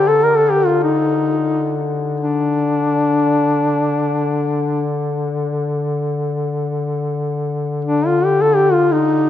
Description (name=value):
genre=caucasian folk, Caucasian lament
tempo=free time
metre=none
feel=none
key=D phrygian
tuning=A4 = 440 Hz
part: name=mellow duduk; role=melody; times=0.0-9.3 s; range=D4 to Bb4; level=-15 LUFS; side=left 2 dB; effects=none
part: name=mellow duduk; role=drone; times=0.0-9.3 s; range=D3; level=-20 LUFS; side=left 2 dB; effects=none
room=moderate cathedral reverb, RT60 4.4 s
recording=none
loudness=-15 LUFS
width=side -11 dB against mid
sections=0.0-9.3 A section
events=slowing down 3.9-9.3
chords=none